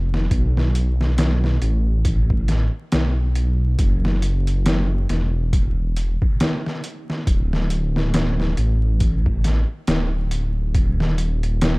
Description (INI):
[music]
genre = trip hop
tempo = 69 BPM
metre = 4/4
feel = swing 58% on 16ths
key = unclear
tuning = A4 = 440 Hz
[part]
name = dark detuned saw bass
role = bass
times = 0.0-11.8 s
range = D1 to B1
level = -19 LUFS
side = equal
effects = none
[part]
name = trip hop sampler-style drum kit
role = drums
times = 0.1-11.8 s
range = hi-hat, kick drum, snare drum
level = -22 LUFS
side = equal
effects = overdrive, small room reverb
[sound]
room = little or no reverb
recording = dark, warm production, vinyl crackle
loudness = -18 LUFS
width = side -27 dB against mid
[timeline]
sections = 0.0-11.8 A section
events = none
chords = none